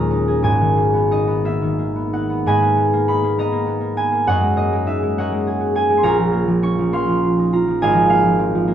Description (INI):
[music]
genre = classical, solo harp piece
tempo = 58-70 BPM (dotted quarters)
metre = 6/8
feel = rubato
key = G# minor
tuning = A4 = 440 Hz
[part]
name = concert harp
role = solo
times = 0.0-8.7 s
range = G#1 to D#6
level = -15 LUFS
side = equal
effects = none
[sound]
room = moderate stone room reverb, RT60 1.0 s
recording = close, detailed microphones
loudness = -15 LUFS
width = side -10 dB against mid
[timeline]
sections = 0.0-2.4 A section; 2.4-8.7 B section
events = none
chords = 0.4 G#madd9; 4.3 F#69; 6.1 A#madd9; 7.8 G#69